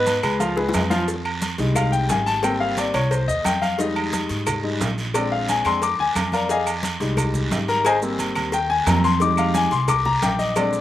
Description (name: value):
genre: Afro-Cuban jazz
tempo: 177 BPM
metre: 4/4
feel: straight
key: unclear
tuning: A4 = 439 Hz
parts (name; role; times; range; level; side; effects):
- warm concert grand piano; accompaniment; 0.0-10.8 s; F3 to D6; -21 LUFS; left 3 dB; slapback echo
- upright bass; bass; 0.0-10.8 s; Ab1 to Ab2; -25 LUFS; right 1 dB; none
- congas; percussion; 0.1-10.6 s; none; -30 LUFS; left 1 dB; none
- cowbell and bongos; percussion; 0.1-10.7 s; none; -33 LUFS; left 4 dB; slapback echo
- guiro; percussion; 0.1-10.8 s; none; -32 LUFS; right 2 dB; slapback echo
- maracas; percussion; 0.1-10.8 s; none; -35 LUFS; right 6 dB; none
- timbales and agogo bells; percussion; 0.1-10.7 s; none; -28 LUFS; right 5 dB; none
- claves; percussion; 0.2-10.7 s; none; -36 LUFS; left 4 dB; none
room: little or no reverb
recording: recorded outdoors, with no room sound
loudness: -19 LUFS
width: side -12 dB against mid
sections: 0.0-1.1 A section; 1.1-10.8 A section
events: drum fill 0.6-1.1, 10.6; grand piano solo 1.1-10.8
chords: 0.4 Db7; 1.1 Fm7; 2.4 Abmaj7; 3.8 Fm7; 5.1 Bb7; 6.5 Abmaj7; 9.2 Fm7